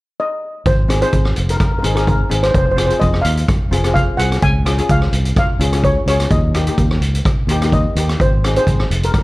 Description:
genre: calypso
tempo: 127 BPM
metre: 4/4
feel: straight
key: unclear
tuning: A4 = 439 Hz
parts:
  - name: steel pan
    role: melody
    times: 0.2-9.2 s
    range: Bb4 to Ab5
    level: -20 LUFS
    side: equal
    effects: none
  - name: fingered electric bass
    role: bass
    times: 0.7-9.1 s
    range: F1 to Eb2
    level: -17 LUFS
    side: equal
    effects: none
  - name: street-band drum kit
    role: drums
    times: 0.7-9.2 s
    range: hi-hat, kick drum, rim click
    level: -17 LUFS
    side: equal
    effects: none
  - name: steel pan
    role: accompaniment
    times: 0.9-9.1 s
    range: Bb3 to Ab4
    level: -23 LUFS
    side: left 2 dB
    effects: none
room: light reverb, small room reverb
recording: dark, warm production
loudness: -13 LUFS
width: side -19 dB against mid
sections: 0.7-9.2 A section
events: none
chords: 0.0 N.C.; 0.7 Fm; 4.4 Db; 6.3 Eb; 8.2 Fm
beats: 0.19 | 0.66 1.13 1.60 2.07 | 2.54 3.01 3.48 3.95 | 4.42 4.89 5.36 5.83 | 6.31 6.78 7.25 7.72 | 8.19 8.66 9.13

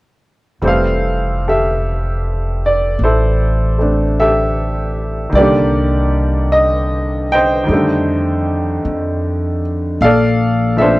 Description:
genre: jazz ballad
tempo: 51 BPM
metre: 4/4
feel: swing 68% on 8ths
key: F major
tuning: A4 = 437 Hz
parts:
  - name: bright upright piano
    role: accompaniment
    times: 0.6-11.0 s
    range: D3 to G5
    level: -15 LUFS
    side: equal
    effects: none
  - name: upright bass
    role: bass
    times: 0.6-11.0 s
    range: F1 to F2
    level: -17 LUFS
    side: equal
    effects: none
room: little or no reverb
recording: dark, warm production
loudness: -13 LUFS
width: side -19 dB against mid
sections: 0.6-11.0 A section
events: none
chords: 0.6 Fmaj9; 5.3 Cm7; 7.7 F13; 10.0 Bbmaj9#11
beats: | 0.63 1.81 3.00 4.17 | 5.34 6.51 7.68 8.85 | 10.01

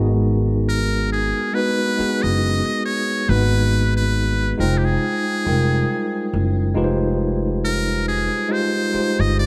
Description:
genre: R&B, neo-soul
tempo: 69 BPM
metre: 4/4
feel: swing 57% on 16ths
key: unclear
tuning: A4 = 440 Hz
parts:
  - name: bell-like tine electric piano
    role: accompaniment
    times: 0.0-9.5 s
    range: G3 to G5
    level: -24 LUFS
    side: equal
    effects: none
  - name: upright bass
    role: bass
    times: 0.0-9.5 s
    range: F1 to Ab1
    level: -22 LUFS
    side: equal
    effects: none
  - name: trumpet with metal mute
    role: melody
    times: 0.7-9.5 s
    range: G4 to Eb5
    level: -26 LUFS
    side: equal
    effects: none
room: light reverb, small room ambience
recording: none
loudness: -20 LUFS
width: mono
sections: 0.0-9.5 A section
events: none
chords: 0.0 Abm9; 4.6 Fm9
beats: 0.66 1.53 2.40 | 3.27 4.14 5.01 5.88 | 6.75 7.62 8.49 9.36

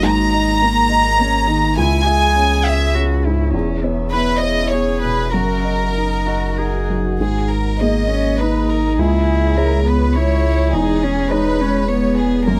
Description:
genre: neoclassical piano and strings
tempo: 102 BPM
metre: 3/4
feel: rubato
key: G# minor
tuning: A4 = 440 Hz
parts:
  - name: warm chamber violin section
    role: melody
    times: 0.0-12.6 s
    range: G#4 to A#5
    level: -22 LUFS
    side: equal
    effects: none
  - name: dark cello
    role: second line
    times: 0.0-12.6 s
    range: A#3 to G#4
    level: -24 LUFS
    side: equal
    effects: none
  - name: dark upright piano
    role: accompaniment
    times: 0.0-12.6 s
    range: C#2 to E5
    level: -24 LUFS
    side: equal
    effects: none
  - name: ethereal airy pad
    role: sustained chords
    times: 0.0-12.6 s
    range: G#3 to F#5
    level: -31 LUFS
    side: equal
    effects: none
  - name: pure sine sub bass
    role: bass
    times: 0.0-12.6 s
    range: E1 to C#2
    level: -22 LUFS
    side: equal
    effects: none
room: little or no reverb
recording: close, detailed microphones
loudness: -17 LUFS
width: mono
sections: 0.0-7.2 A section; 7.2-12.6 A section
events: none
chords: 0.1 G#sus2; 1.8 C#m; 3.5 E6; 5.3 D#m/F#; 7.2 G#sus2; 9.0 C#m; 10.7 E6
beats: | 0.05 0.63 1.21 | 1.79 2.36 2.95 | 3.53 4.12 4.71 | 5.33 5.95 6.57 | 7.19 7.79 8.38 | 8.98 9.56 10.14 | 10.73 11.30 11.89 | 12.47

